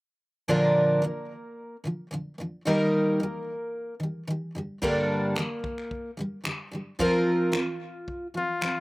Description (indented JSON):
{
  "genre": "acoustic pop",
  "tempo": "111 BPM",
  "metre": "4/4",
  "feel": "straight",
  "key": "Bb major",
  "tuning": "A4 = 440 Hz",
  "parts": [
    { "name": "picked twelve-string acoustic guitar", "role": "accompaniment", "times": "0.5-8.8 s", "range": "G2 to Bb4", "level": "-25 LUFS", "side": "equal", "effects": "none" },
    { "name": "natural country drum kit", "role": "drums", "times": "4.8-8.7 s", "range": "finger snaps, kick drum", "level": "-34 LUFS", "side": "left 1 dB", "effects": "none" },
    { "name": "clear trumpet", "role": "melody", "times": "8.4-8.8 s", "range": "F4", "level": "-27 LUFS", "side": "left 3 dB", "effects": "none" }
  ],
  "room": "little or no reverb",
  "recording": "recorded outdoors, with no room sound",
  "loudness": "-25 LUFS",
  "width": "side -21 dB against mid",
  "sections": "0.5-8.8 A section",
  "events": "none",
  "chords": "0.5 Bb; 2.7 Eb; 4.6 Gmadd9; 7.0 Fsus4"
}